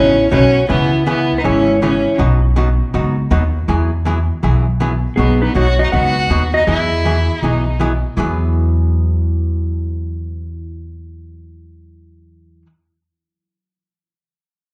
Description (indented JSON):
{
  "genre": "country, western swing",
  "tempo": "160 BPM",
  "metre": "4/4",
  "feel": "swing 63% on 8ths",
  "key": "E major",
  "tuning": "A4 = 441 Hz",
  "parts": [
    { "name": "clean lap steel guitar", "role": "melody", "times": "0.0-2.2, 5.2-7.8 s", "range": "B3 to F#5", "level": "-19 LUFS", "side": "equal", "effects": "slapback echo" },
    { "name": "rich fiddle", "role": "second line", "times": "0.0-2.2, 5.2-7.8 s", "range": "B3 to F#4", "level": "-22 LUFS", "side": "equal", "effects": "slapback echo" },
    { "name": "archtop guitar, miked and amplified", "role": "accompaniment", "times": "0.0-12.7 s", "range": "B2 to B4", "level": "-23 LUFS", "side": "equal", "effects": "slapback echo" },
    { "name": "upright bass", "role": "bass", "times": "0.0-12.6 s", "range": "G#1 to E2", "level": "-19 LUFS", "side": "equal", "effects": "none" }
  ],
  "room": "light reverb, studio reverb",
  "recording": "live gig heard through the venue's PA, club reverb",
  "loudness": "-16 LUFS",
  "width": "mono",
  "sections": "0.0-5.2 A section; 5.2-8.2 B section; 8.2-11.2 C section",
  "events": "none",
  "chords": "0.0 Badd9; 0.7 C#m7; 2.2 B; 3.7 Eadd9; 5.2 B; 6.7 Eadd9",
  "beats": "0.32 | 0.69 1.07 1.44 1.81 | 2.19 2.56 2.93 3.31 | 3.68 4.06 4.43 4.80 | 5.18 5.55 5.92 6.30 | 6.67 7.05 7.42 7.79 | 8.17 8.54 8.91 9.29 | 9.66 10.04 10.41 10.78"
}